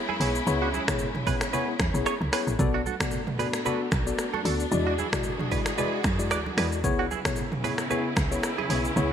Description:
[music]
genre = afrobeats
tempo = 113 BPM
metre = 4/4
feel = swing 55% on 16ths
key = unclear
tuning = A4 = 439 Hz
[part]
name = warm studio string section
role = sustained chords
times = 0.0-9.1 s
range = C#3 to G#4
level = -33 LUFS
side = right 1 dB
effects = none
[part]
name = direct-recorded clean electric guitar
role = riff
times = 0.1-8.8 s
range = D4 to D5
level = -33 LUFS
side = right 10 dB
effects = analog chorus, ping-pong delay
[part]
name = congas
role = percussion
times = 0.1-9.1 s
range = none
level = -38 LUFS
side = right 5 dB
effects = none
[part]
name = tine electric piano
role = accompaniment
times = 0.2-9.1 s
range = G#3 to D5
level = -30 LUFS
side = left 5 dB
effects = lush chorus
[part]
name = woody log drum bass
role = bass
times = 0.2-9.1 s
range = A1 to F#2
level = -28 LUFS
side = equal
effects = none
[part]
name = deep house drum kit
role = drums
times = 0.2-9.1 s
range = finger snaps, hi-hat, kick drum, rim click, shaker, toms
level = -29 LUFS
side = equal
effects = gated reverb
[sound]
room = light reverb, digital ambience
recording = bright 1980s-style digital production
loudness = -24 LUFS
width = side -8 dB against mid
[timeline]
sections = 0.0-9.1 A section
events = none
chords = 0.0 C#m7; 2.6 Bm7; 4.7 E9; 6.8 C#m7

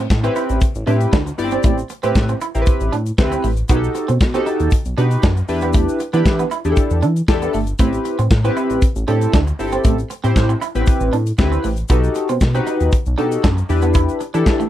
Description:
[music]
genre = early-eighties boogie funk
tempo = 117 BPM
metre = 4/4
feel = straight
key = A minor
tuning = A4 = 440 Hz
[part]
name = clean electric guitar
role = riff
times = 0.0-14.7 s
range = A3 to E4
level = -24 LUFS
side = right 7 dB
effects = analog chorus
[part]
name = chorused synth bass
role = bass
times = 0.0-14.7 s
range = G1 to E3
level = -19 LUFS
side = equal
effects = none
[part]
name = modern studio drum kit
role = drums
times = 0.1-14.7 s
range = handclaps, hi-hat, kick drum, snare drum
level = -16 LUFS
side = equal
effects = none
[part]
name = tube shaker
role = percussion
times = 0.1-14.7 s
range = none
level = -41 LUFS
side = left 14 dB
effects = none
[part]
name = chorused polysynth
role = accompaniment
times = 0.2-14.6 s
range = B3 to D5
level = -20 LUFS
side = left 1 dB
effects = none
[sound]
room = little or no reverb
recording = dry, close 1970s-style studio recording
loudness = -15 LUFS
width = side -12 dB against mid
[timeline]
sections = 0.0-14.7 A section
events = none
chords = 0.0 Am9; 3.7 B7b13; 5.5 Em7; 7.8 Am9; 11.9 B7b13; 13.7 Em7

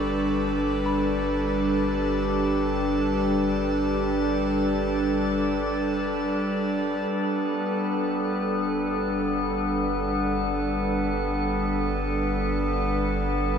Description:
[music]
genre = ambient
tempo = free time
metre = none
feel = none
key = G major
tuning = A4 = 437 Hz
[part]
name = airy breathy pad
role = sustained chords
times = 0.0-13.6 s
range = G3 to B4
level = -25 LUFS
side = equal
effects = chorus
[part]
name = soft synth bell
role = arpeggios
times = 0.0-8.1 s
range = G4 to C#6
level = -40 LUFS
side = left 2 dB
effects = none
[part]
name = round analog bass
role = bass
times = 0.0-13.6 s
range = G1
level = -33 LUFS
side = right 1 dB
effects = none
[part]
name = drifting glass-harmonics texture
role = texture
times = 0.0-13.6 s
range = B3 to D5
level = -29 LUFS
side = left 2 dB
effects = chorus, built-in reverb
[part]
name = analog drone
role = drone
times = 1.7-7.2 s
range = G3 to G4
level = -33 LUFS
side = right 1 dB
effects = chorus
[sound]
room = wet cathedral reverb, RT60 6.0 s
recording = in a vast, echoing space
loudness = -23 LUFS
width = side -7 dB against mid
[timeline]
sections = 0.0-7.1 A section; 7.1-13.6 B section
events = fade-in on analog synth bass 0.0-7.1; fade-in on synth texture 0.0-7.1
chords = 0.0 Gadd9

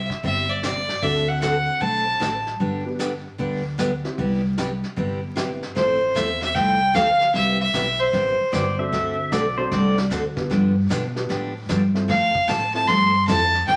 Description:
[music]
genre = country, western swing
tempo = 152 BPM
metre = 4/4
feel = swing 66% on 8ths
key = C major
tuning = A4 = 439 Hz
[part]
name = clear fiddle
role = melody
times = 0.0-2.5, 5.8-8.8, 12.1-13.8 s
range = C5 to C6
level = -22 LUFS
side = equal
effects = none
[part]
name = upright bass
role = bass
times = 0.0-13.8 s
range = G1 to B2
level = -27 LUFS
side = equal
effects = none
[part]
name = vintage brush drum kit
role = drums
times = 0.1-13.8 s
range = brushed snare drum, hi-hat, kick drum, snare drum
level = -36 LUFS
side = equal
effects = none
[part]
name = picked steel-string acoustic guitar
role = accompaniment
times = 0.2-13.8 s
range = C3 to A4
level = -30 LUFS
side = equal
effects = none
[part]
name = dark upright piano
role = accompaniment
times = 1.0-13.5 s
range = B3 to C5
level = -34 LUFS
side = equal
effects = none
[part]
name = pedal steel guitar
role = second line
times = 8.5-10.0 s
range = C5 to E5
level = -28 LUFS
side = equal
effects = none
[sound]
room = wet studio reverb, RT60 0.9 s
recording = vinyl crackle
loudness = -22 LUFS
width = mono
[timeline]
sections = 0.0-5.8 A section; 5.8-13.8 B section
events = none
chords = 0.0 C; 1.0 D7; 2.6 G; 4.2 Cmaj7; 5.8 Fmaj7; 7.3 Cmaj7; 8.9 D7; 10.5 G7; 12.1 Fmaj7

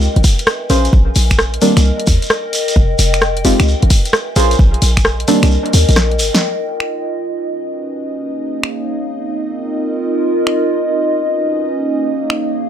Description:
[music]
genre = UK garage, two-step garage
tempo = 131 BPM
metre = 4/4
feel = swing 66% on 16ths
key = F minor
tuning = A4 = 438 Hz
[part]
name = short 808-style bass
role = bass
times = 0.0-6.3 s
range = F1 to Eb2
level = -13 LUFS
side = equal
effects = sidechain pumping
[part]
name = shekere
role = percussion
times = 0.0-6.4 s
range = none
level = -23 LUFS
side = right 1 dB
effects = none
[part]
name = warbly tape-like pad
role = texture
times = 0.0-12.7 s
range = Bb3 to G#5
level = -19 LUFS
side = equal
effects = chorus, built-in reverb, sidechain pumping
[part]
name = electronic kick drum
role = drums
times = 0.2-5.0 s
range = none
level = -12 LUFS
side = equal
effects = none
[part]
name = house drum kit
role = drums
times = 0.2-12.4 s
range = finger snaps, hi-hat, rim click, snare drum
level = -17 LUFS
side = equal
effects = none
[part]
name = deep mellow chord stab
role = stabs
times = 0.7-5.4 s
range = Eb3 to C5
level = -17 LUFS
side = equal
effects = wide subtle chorus, dub echo
[part]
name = warm analog pad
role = sustained chords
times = 6.4-12.7 s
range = Eb4 to Eb5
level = -24 LUFS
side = equal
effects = chorus, sidechain pumping
[sound]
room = moderate studio reverb, RT60 0.6 s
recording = none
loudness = -12 LUFS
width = side -9 dB against mid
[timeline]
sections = 0.0-6.4 A section; 6.4-12.7 B section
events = kick drops out 5.5-6.4; drum fill 6.0-6.4; band accent 6.3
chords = 0.0 E/G#; 0.7 Bbm9; 1.6 Cm9; 2.8 Fm9; 3.7 E/G#; 4.4 Bbm9; 5.3 Cm9; 6.4 Fsus2

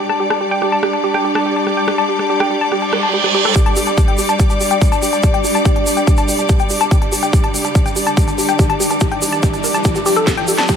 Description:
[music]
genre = psychedelic trance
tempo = 143 BPM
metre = 4/4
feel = straight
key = unclear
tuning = A4 = 442 Hz
[part]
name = overtone-sweeping drone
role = sustained chords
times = 0.0-10.8 s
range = D4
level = -21 LUFS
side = equal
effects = chorus, built-in reverb, sidechain pumping
[part]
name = woody wave-folded pluck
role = riff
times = 0.0-10.8 s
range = G4 to A5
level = -19 LUFS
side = moving between left 7 dB and right 3 dB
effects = chorus, auto-pan, sidechain pumping, dub echo
[part]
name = downlifter, reverse cymbal and riser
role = sound effects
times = 2.9-10.8 s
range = none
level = -23 LUFS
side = right 4 dB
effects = none
[part]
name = rich studio string section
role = texture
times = 0.0-10.8 s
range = G3 to D6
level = -20 LUFS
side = equal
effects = sidechain pumping
[part]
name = drum and bass drum kit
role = drums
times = 0.1-10.8 s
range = hi-hat, rim click, snare drum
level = -24 LUFS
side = right 1 dB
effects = high-pass filter on snare, low-pass filter on snare, high-pass filter on hats, low-pass filter on hats, high-pass filter on cymbals, low-pass filter on cymbals, high-pass filter on room, low-pass filter on room
[part]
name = electronic kick drum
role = drums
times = 3.6-10.8 s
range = none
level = -14 LUFS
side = equal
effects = none
[part]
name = tube shaker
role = percussion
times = 3.6-10.8 s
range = none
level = -24 LUFS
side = right 2 dB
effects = none
[part]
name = round analog bass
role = bass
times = 3.8-10.7 s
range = none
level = barely audible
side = none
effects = none
[sound]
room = light reverb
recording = high-pass filter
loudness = -13 LUFS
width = side -7 dB against mid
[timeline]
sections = 0.0-3.6 A section; 3.6-10.8 B section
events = reverse cymbal 2.9-3.6; build-up 3.6-10.8; riser 3.6-10.8; filter sweep on synth arpeggio sound 3.6-10.8; drum fill 10.3-10.8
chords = 0.0 G5

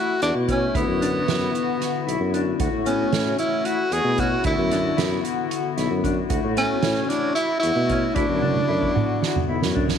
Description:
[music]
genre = progressive instrumental, band music in an uneven meter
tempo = 227 BPM (eighths)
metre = 7/8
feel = straight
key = D major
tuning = A4 = 439 Hz
[part]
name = clear tenor saxophone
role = melody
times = 0.0-9.5 s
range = B3 to G#4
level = -24 LUFS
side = right 1 dB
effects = none
[part]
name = hollow soft pad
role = accompaniment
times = 0.0-10.0 s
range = D3 to F#4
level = -27 LUFS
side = left 13 dB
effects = chorus
[part]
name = mellow electric guitar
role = arpeggios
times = 0.0-10.0 s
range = B3 to F#4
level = -29 LUFS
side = left 1 dB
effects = tremolo
[part]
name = warm tuba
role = bass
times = 0.2-9.9 s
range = B1 to B2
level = -25 LUFS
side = right 1 dB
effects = none
[part]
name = soft-mallet drum kit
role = drums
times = 0.2-10.0 s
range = hi-hat, kick drum, snare drum, toms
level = -27 LUFS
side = right 4 dB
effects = none
[sound]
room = light reverb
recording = 1960s-style stereo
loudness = -20 LUFS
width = side -8 dB against mid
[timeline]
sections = 0.0-10.0 A section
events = drum fill 8.4-10.0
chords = 0.0 F#m7; 0.8 D69; 2.6 F#m7/D; 4.5 D69; 6.3 F#m7/D; 8.2 D69

